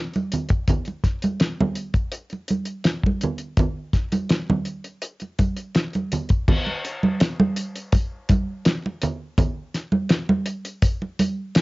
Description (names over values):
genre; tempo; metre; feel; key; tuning
soul; 83 BPM; 4/4; straight; none; none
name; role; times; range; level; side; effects
cloth-damped thuddy drum kit; drums; 0.1-11.6 s; crash cymbal, hi-hat, kick drum, snare drum; -20 LUFS; left 1 dB; cassette tape
congas; percussion; 0.2-11.4 s; none; -23 LUFS; right 2 dB; none
room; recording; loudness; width
light reverb; home recording on cassette, nothing above 7.6 kHz; -21 LUFS; side -21 dB against mid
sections
0.0-6.5 A section; 6.5-11.6 B section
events
none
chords
none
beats
| 0.69 1.41 2.13 2.86 | 3.58 4.31 5.03 5.76 | 6.48 7.21 7.93 8.66 | 9.38 10.10 10.83 11.55